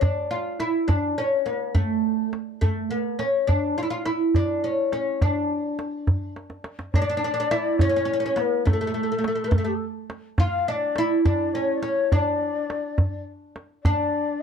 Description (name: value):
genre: Persian modal ensemble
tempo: 69 BPM (dotted quarters)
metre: 6/8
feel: straight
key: D avaz esfahan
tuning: A4 = 440 Hz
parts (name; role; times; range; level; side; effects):
- oud; melody; 0.0-14.4 s; A3 to F4; -24 LUFS; equal; none
- tombak; percussion; 0.0-14.0 s; none; -23 LUFS; right 1 dB; none
- breathy mellow low ney; second line; 6.9-14.4 s; G4 to F5; -28 LUFS; left 6 dB; none
room: moderate small room reverb, RT60 0.5 s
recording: none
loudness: -21 LUFS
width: side -7 dB against mid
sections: 0.0-6.9 A section; 6.9-14.4 B section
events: drum fill 6.4-6.9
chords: none